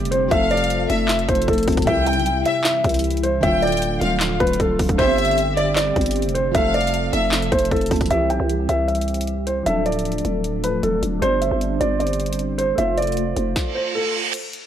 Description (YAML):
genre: hip hop, trap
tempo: 154 BPM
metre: 4/4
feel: half-time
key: C major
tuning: A4 = 445 Hz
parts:
  - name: dark baby grand piano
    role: melody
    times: 0.0-14.1 s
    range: A4 to G5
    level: -22 LUFS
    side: equal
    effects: low-pass filter, tape echo
  - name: soft electric-piano-like synth keys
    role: accompaniment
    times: 0.0-14.3 s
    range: C3 to C5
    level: -26 LUFS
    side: right 1 dB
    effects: chorus, phaser, low-pass filter
  - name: dark analog pad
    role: sustained chords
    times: 0.0-13.6 s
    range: C3 to C5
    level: -30 LUFS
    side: right 2 dB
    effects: chorus
  - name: growling 808-style bass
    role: bass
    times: 0.0-13.6 s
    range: D1 to C2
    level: -23 LUFS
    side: equal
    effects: none
  - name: trap drum kit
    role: drums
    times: 0.1-14.6 s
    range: crash cymbal, handclaps, hi-hat, kick drum, snare drum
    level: -24 LUFS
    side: equal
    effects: overdrive
  - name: warm studio violin section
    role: second line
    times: 0.3-7.3 s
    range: D5 to G5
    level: -25 LUFS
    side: left 2 dB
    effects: tape echo
  - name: reverse cymbal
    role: sound effects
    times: 13.7-14.3 s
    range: none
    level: -25 LUFS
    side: right 6 dB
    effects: none
room: digital ambience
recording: dry, gritty hardware recording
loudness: -17 LUFS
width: side -10 dB against mid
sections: 0.0-8.1 A section; 8.1-14.3 B section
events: reverse cymbal 13.7-14.3; break 14.3-14.7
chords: 0.3 F; 1.9 C; 3.4 Dm; 5.0 Gsus4; 6.5 F; 8.1 C; 9.7 Dm; 11.2 Gsus4; 12.8 F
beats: | 0.31 0.70 1.09 1.48 | 1.87 2.26 2.65 3.04 | 3.43 3.82 4.21 4.60 | 4.99 5.38 5.77 6.16 | 6.55 6.94 7.33 7.71 | 8.11 8.49 8.88 9.27 | 9.66 10.05 10.44 10.83 | 11.22 11.61 12.00 12.39 | 12.78 13.17 13.56 13.95 | 14.34